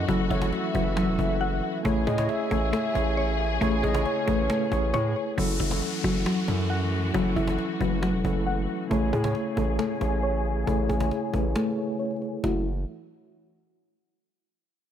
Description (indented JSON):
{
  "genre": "hip hop, trap",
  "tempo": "136 BPM",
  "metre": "4/4",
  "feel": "half-time",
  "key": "F# minor",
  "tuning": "A4 = 440 Hz",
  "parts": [
    { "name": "soft octave-layered synth lead", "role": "second line", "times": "0.0-4.9 s", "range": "C#5 to E5", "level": "-32 LUFS", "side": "right 1 dB", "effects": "chorus, ping-pong delay" },
    { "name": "mellow tine electric piano", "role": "accompaniment", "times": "0.0-12.6 s", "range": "F#3 to C#5", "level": "-29 LUFS", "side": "equal", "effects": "fast stereo tremolo, low-pass filter" },
    { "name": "dark symphonic string section", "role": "sustained chords", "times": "0.0-12.6 s", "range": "C#3 to G#4", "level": "-34 LUFS", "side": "left 3 dB", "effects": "low-pass filter" },
    { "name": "mallet-like synth pluck", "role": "arpeggios", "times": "0.0-12.6 s", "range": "F#3 to F#5", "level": "-29 LUFS", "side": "left 2 dB", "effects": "chorus, low-pass filter, ping-pong delay" },
    { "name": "distorted 808-style bass", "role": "bass", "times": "0.0-12.8 s", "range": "E1 to A2", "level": "-28 LUFS", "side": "right 1 dB", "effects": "distortion" },
    { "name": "cajon", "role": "drums", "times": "0.1-12.5 s", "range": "none", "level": "-36 LUFS", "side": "right 1 dB", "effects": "none" },
    { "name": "downlifter", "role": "sound effects", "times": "5.4-8.9 s", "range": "none", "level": "-36 LUFS", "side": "left 1 dB", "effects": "none" }
  ],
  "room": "little or no reverb",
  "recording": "none",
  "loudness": "-23 LUFS",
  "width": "side -9 dB against mid",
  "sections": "0.0-5.4 A section; 5.4-12.4 B section; 12.4-14.2 C section",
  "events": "filter sweep 5.4-12.4; break 11.6-12.4",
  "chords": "0.0 F#m7; 1.9 Amaj7; 5.4 F#m7; 8.9 Amaj7; 12.4 F#m7"
}